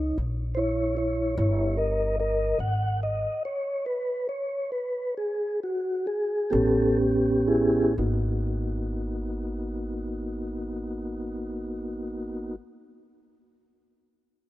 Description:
slow blues; 40-50 BPM (dotted quarters); 12/8; straight; G# minor; A4 = 440 Hz
mellow tonewheel organ; sustained chords; 0.0-12.6 s; A#3 to F#5; -26 LUFS; equal; slow rotary speaker
upright bass; bass; 0.0-12.5 s; G1 to C#2; -30 LUFS; equal
light reverb, studio ambience; rough home demo mix; -25 LUFS; side -15 dB against mid
0.0-8.0 A section; 8.0-14.0 B section
tonewheel organ solo 0.0-8.0; slowing down 1.0-8.0; stop 2.6-6.5
0.0 D#7b9; 2.6 G#madd11; 6.5 A7; 8.0 G#m9
0.19 1.39 | 2.61 3.86 5.16 6.53 | 7.98 9.49 11.01 12.52

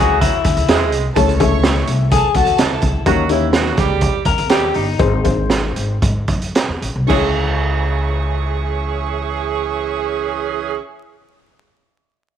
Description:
uptempo 1960s-style soul; 108-126 BPM; 4/4; straight; C# harmonic minor; A4 = 440 Hz
clear saxophone section; second line; 0.0-10.8 s; E3 to G#4; -21 LUFS; right 10 dB
dark upright piano; accompaniment; 0.0-10.8 s; G#3 to E5; -21 LUFS; left 9 dB
electric guitar through a small old amp; riff; 0.0-5.2 s; D#4 to A#4; -19 LUFS; left 12 dB; vibrato effect
upright bass; bass; 0.0-10.8 s; G1 to G#2; -20 LUFS; equal
raw garage drum kit; drums; 0.2-7.2 s; crash cymbal, hi-hat, kick drum, snare drum; -18 LUFS; right 2 dB
warm chamber violin section; second line; 1.1-2.8, 7.1-10.8 s; G#4 to C#6; -25 LUFS; right 10 dB
light reverb, small room ambience; 1960s-style stereo with parts hard left and right, vinyl crackle; -14 LUFS; side -9 dB against mid
0.0-7.1 A section; 7.1-11.5 B section
slowing down 3.1-7.1
0.0 C#m; 1.2 A; 3.1 D#7; 5.0 G#; 7.1 C#m
0.21 0.69 | 1.16 1.64 2.11 2.59 | 3.06 3.54 4.02 4.50 | 5.00 5.50 6.02 6.55 | 7.09 7.65 8.21 8.77 | 9.32 9.88 10.43

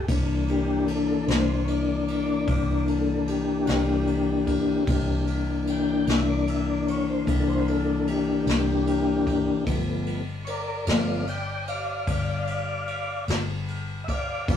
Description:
slow blues; 50 BPM (dotted quarters); 12/8; straight; A4 = 439 Hz
tonewheel organ; sustained chords; 0.0-14.6 s; E3 to G5; -24 LUFS; left 3 dB; slow rotary speaker, chorus vibrato
vintage muted fingered electric bass; bass; 0.0-14.6 s; G1 to C2; -29 LUFS; left 1 dB
jazz brush drum kit; drums; 0.1-14.6 s; kick drum, ride cymbal, snare drum, splash cymbal; -30 LUFS; equal
moderate stone room reverb, RT60 1.0 s; rough rehearsal-room recording; -23 LUFS; side -9 dB against mid
0.0-14.6 A section
tonewheel organ solo 0.0-14.6
0.1 C7; 9.7 G7
| 0.09 1.28 2.48 3.68 | 4.88 6.08 7.28 8.47 | 9.68 10.88 12.08 13.28 | 14.48

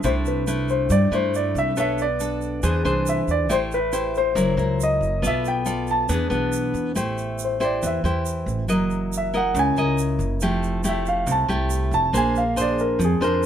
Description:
bossa nova; 139 BPM; 4/4; straight; A minor; A4 = 440 Hz
warm concert grand piano; melody; 0.0-13.4 s; Ab4 to A5; -24 LUFS; equal
nylon-string guitar; accompaniment; 0.0-13.5 s; C3 to D#5; -24 LUFS; equal
upright bass; bass; 0.0-13.5 s; F1 to G2; -26 LUFS; equal
egg shaker; percussion; 0.0-13.5 s; -36 LUFS; right 9 dB
light reverb; -20 LUFS; side -9 dB against mid
0.0-7.0 A section; 7.0-13.5 B section
grand piano solo 7.0-13.5
0.0 C69; 1.8 Bm9; 2.6 Eaug7; 3.5 Am7; 4.4 F#7b13; 5.2 Bm7b5; 6.1 E7; 7.0 Am7; 8.7 F#13; 10.4 Fmaj9; 12.1 Bb9
| 0.03 0.47 0.90 1.33 | 1.77 2.20 2.63 3.07 | 3.50 3.93 4.37 4.80 | 5.23 5.66 6.09 6.53 | 6.96 7.39 7.83 8.26 | 8.69 9.12 9.55 9.98 | 10.42 10.85 11.28 11.71 | 12.14 12.57 13.01 13.44

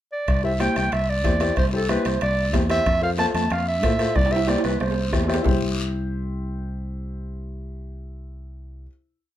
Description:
latin, cumbia; 185 BPM; 4/4; straight; C major; A4 = 440 Hz
clear clarinet; melody; 0.1-5.1 s; A4 to A5; -24 LUFS; right 1 dB
fingered electric bass; bass; 0.3-8.9 s; C2 to A2; -26 LUFS; equal
bombo; percussion; 0.3-5.5 s; -26 LUFS; equal
guiro; percussion; 0.3-5.5 s; -37 LUFS; left 4 dB
timbales; percussion; 0.3-5.5 s; -31 LUFS; right 9 dB
warm upright piano; accompaniment; 0.4-8.9 s; E4 to C5; -28 LUFS; left 5 dB
congas; percussion; 0.6-5.5 s; -30 LUFS; right 3 dB
moderate studio reverb, RT60 0.5 s; minimal, uncompressed stereo recording; -20 LUFS; side -12 dB against mid
0.0-0.3 pickup bar; 0.3-5.5 A section; 5.5-8.0 final chord
drum fill 4.2-5.5
0.3 Cadd9; 2.9 F; 4.2 C
| 0.28 0.60 0.93 1.25 | 1.57 1.90 2.22 2.54 | 2.86 3.19 3.51 3.83 | 4.16 4.48 4.81 5.13 | 5.45 5.78 6.10 6.43 | 6.75 7.08 7.40 7.72

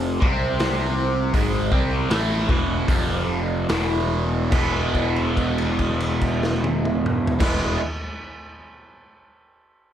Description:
psychedelic rock; 71-82 BPM; 4/4; straight; A4 = 440 Hz
raw garage guitar; riff; 0.0-7.8 s; E2 to E4; -23 LUFS; right 1 dB; overdrive, phaser
fuzz picked electric bass; bass; 0.0-7.8 s; E1 to C2; -26 LUFS; equal; overdrive
raw garage drum kit; drums; 0.2-7.6 s; crash cymbal, hi-hat, kick drum, snare drum, toms; -24 LUFS; equal
light reverb; -19 LUFS; side -10 dB against mid
0.0-4.5 A section; 4.5-7.9 B section
slowing down 0.0-4.5; held note 4.5-7.4
0.2 C5; 1.3 E; 2.9 F5; 3.7 E5; 4.5 E
0.59 | 1.34 2.10 2.89 3.69 | 4.53 5.37 6.22 7.07

